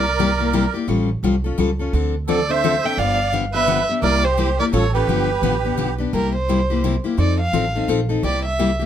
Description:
acoustic string swing (jazz manouche); 171 BPM; 3/4; swing 61% on 8ths; C mixolydian; A4 = 440 Hz
dark violin; melody; 0.0-8.9 s; Bb4 to G5; -22 LUFS; right 2 dB
musette accordion; second line; 0.0-5.9 s; G4 to E5; -24 LUFS; right 9 dB
picked steel-string acoustic guitar; accompaniment; 0.0-8.9 s; C3 to A4; -21 LUFS; left 5 dB
upright bass; bass; 0.0-8.9 s; G1 to F2; -22 LUFS; right 2 dB
light reverb; -17 LUFS; side -10 dB against mid
0.0-6.1 A section; 6.1-8.9 B section
violin solo 6.1-8.9
0.0 C7; 0.9 A7alt; 1.9 Dm7; 3.0 G7; 4.0 C7; 4.7 Aaug7; 5.1 G7; 6.1 C7; 7.2 F7; 8.2 C7

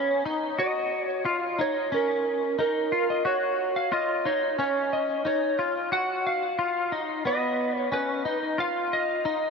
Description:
dream pop; 90 BPM; 4/4; straight; F# major; A4 = 441 Hz
electric slide guitar; melody; 0.0-9.5 s; A#4 to F#5; -26 LUFS; right 2 dB; shimmer reverb, ping-pong delay
clean electric guitar; arpeggios; 0.0-9.5 s; B3 to F#4; -27 LUFS; left 3 dB; ensemble chorus, shimmer reverb, ping-pong delay
wet huge ambient reverb, RT60 3.9 s; -24 LUFS; side -5 dB against mid
0.0-9.5 A section
0.0 N.C.; 0.6 F#; 5.9 B; 8.6 N.C.

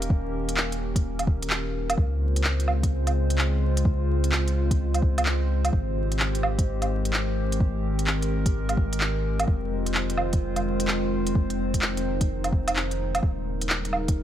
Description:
future garage; 128 BPM; 4/4; swing 65% on 16ths; F minor; A4 = 440 Hz
warbly tape-like pad; sustained chords; 0.0-14.2 s; Db3 to C5; -29 LUFS; left 1 dB; chorus, built-in reverb, sidechain pumping
warm sub bass; bass; 0.0-14.2 s; Eb1 to Db2; -27 LUFS; equal; sidechain pumping
organic electronic drum kit; drums; 0.0-14.1 s; handclaps, hi-hat, woodblock; -27 LUFS; right 1 dB; small room ambience
electronic kick drum; drums; 0.1-14.1 s; -23 LUFS; equal; small room ambience
light reverb; vinyl crackle; -22 LUFS; side -11 dB against mid
0.0-14.2 A section
0.0 Eb7; 2.0 Dbmaj7; 5.7 Abmaj7; 9.5 Fm7; 13.2 Eb7

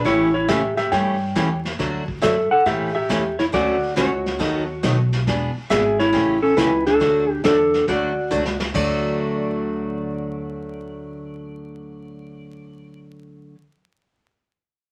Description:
country, western swing; 138 BPM; 4/4; swing 67% on 8ths; D major; A4 = 440 Hz
clean lap steel guitar; melody; 0.0-13.0 s; C#4 to G5; -21 LUFS; equal
picked steel-string acoustic guitar; accompaniment; 0.0-13.6 s; C#3 to A4; -28 LUFS; equal
upright bass; bass; 0.0-13.5 s; E1 to A2; -30 LUFS; equal
vintage brush drum kit; drums; 0.0-9.1 s; brushed snare drum, crash cymbal, hi-hat, kick drum, snare drum; -31 LUFS; equal
wet small room reverb, RT60 0.5 s; vinyl crackle; -20 LUFS; mono
0.0-8.7 A section; 8.7-12.2 B section
drum fill 8.3-8.7
0.1 A7; 1.8 D; 2.7 A7; 3.5 Dmaj7; 4.4 B7/D#; 5.3 E7; 6.1 A7; 7.0 D

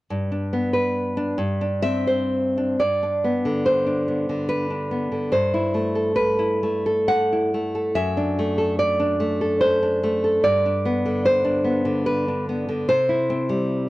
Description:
romantic piece for solo classical guitar; 58-76 BPM; 3/4; rubato; G major; A4 = 440 Hz
nylon-string guitar; solo; 0.1-13.9 s; F#2 to F#5; -19 LUFS; equal
light reverb; dry, close 1970s-style studio recording; -19 LUFS; side -18 dB against mid
0.1-2.8 A section; 2.8-13.9 B section
0.1 G; 1.4 Cadd9/G; 2.8 G; 5.3 Am7/G; 8.0 D/F#; 10.4 G; 12.9 C

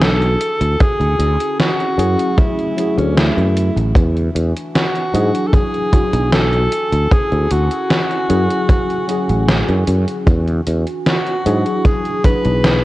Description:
vaporwave; 76 BPM; 4/4; straight; D lydian; A4 = 440 Hz
bright alto saxophone; melody; 0.0-12.8 s; C#4 to B4; -20 LUFS; equal; tape echo
tine electric piano; accompaniment; 0.0-12.8 s; F#3 to G#4; -21 LUFS; equal; medium stereo tremolo, analog chorus, tape echo
warbly tape-like pad; sustained chords; 0.5-12.8 s; D3 to G#5; -27 LUFS; equal; chorus, built-in reverb
sustaining fretless electric bass; bass; 0.0-12.8 s; A1 to G#2; -16 LUFS; equal
gated 80s digital drum machine; drums; 0.0-12.8 s; hi-hat, snare drum; -18 LUFS; equal; gated reverb, gated reverb snare
kick drum; drums; 0.8-12.4 s; -14 LUFS; equal
studio reverb; worn, warbling old tape, cassette tape, warbly pitch drift; -13 LUFS; side -17 dB against mid
0.0-12.8 A section
0.4 Dmaj9#11; 4.0 E9; 6.7 Dmaj9#11; 10.3 E9

